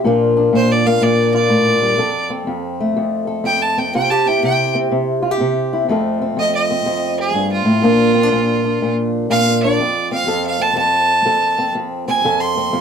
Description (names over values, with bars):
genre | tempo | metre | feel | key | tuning
acoustic country blues, solo or duo | 123 BPM | 4/4 | swing 66% on 8ths | F major | A4 = 440 Hz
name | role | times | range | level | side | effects
fingerpicked old ladder-braced acoustic guitar | accompaniment | 0.0-12.8 s | F2 to A4 | -16 LUFS | left 1 dB | none
bright fiddle | melody | 0.6-12.8 s | F4 to C6 | -17 LUFS | right 2 dB | none
room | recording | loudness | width
wet small room ambience, RT60 0.5 s | heard from further back in the room | -14 LUFS | side -7 dB against mid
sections
0.0-5.9 A section; 5.9-12.8 B section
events
fiddle solo 5.9-12.8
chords
0.0 Bb; 2.0 F; 3.9 C; 5.9 F; 7.8 Bb; 9.8 F